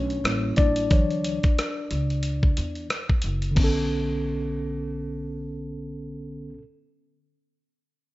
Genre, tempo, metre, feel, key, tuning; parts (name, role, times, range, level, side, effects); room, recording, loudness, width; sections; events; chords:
hip hop, jazz-hop; 90 BPM; 4/4; swing 59% on 16ths; B minor; A4 = 440 Hz
mellow tine electric piano; accompaniment; 0.0-6.6 s; D3 to D5; -27 LUFS; left 1 dB; medium stereo tremolo
upright bass; bass; 0.0-6.5 s; F#1 to E2; -30 LUFS; equal
dusty soul sampler-style drum kit; drums; 0.1-3.8 s; crash cymbal, hi-hat, kick drum, rim click; -23 LUFS; equal; vintage 12-bit sampler grit
little or no reverb; rough home demo mix, nothing above 7.7 kHz; -22 LUFS; side -18 dB against mid
0.0-3.6 A section; 3.6-6.2 B section
tine electric piano solo 0.0-3.6
0.2 A7b9; 0.9 Dmaj9; 3.6 Bm9